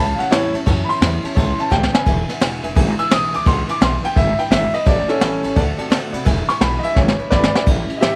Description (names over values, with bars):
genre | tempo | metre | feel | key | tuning
rockabilly | 171 BPM | 4/4 | swing 64% on 8ths | unclear | A4 = 440 Hz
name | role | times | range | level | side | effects
warm upright piano | melody | 0.0-8.2 s | C#4 to E6 | -23 LUFS | equal | none
picked steel-string acoustic guitar | accompaniment | 0.0-8.2 s | E2 to F#4 | -29 LUFS | equal | none
tack piano | accompaniment | 0.0-7.6 s | B4 to B5 | -32 LUFS | equal | none
upright bass | bass | 0.0-8.2 s | E1 to C3 | -25 LUFS | equal | none
jazz brush drum kit | drums | 0.2-8.1 s | crash cymbal, kick drum, ride cymbal, snare drum | -20 LUFS | equal | none
room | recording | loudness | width
light reverb, small room reverb | none | -17 LUFS | mono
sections
0.0-7.7 A section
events
upright piano solo 0.0-7.7; drum fill 1.7-2.1, 7.0-7.7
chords
0.0 A7; 2.1 E7; 4.9 A7; 5.6 D7; 6.3 E7